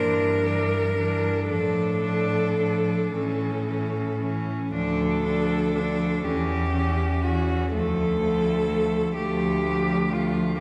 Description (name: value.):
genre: classical, lyrical piece for cello ensemble.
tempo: 36-43 BPM (dotted quarters).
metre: 6/8.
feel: rubato.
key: D minor.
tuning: A4 = 440 Hz.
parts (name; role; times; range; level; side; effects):
rich cello; melody; 0.0-10.6 s; F4 to Bb4; -29 LUFS; equal; none.
clear cello; second line; 0.0-10.6 s; A3 to D4; -32 LUFS; equal; none.
clear cello; accompaniment; 0.0-10.6 s; E3 to F3; -31 LUFS; equal; none.
clear cello; bass; 0.0-10.4 s; D2 to A2; -30 LUFS; equal; none.
room: wet scoring stage reverb, RT60 2.0 s.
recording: recorded in a church or concert hall.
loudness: -25 LUFS.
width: mono.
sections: 0.0-10.6 A section.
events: none.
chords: 0.0 Em7b5/G; 1.5 Dm/A; 3.1 A; 4.7 Dm; 6.3 C#dim/E; 7.7 Dm.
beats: | 1.50 3.13 | 4.74 6.25 | 7.72 9.16 | 10.58.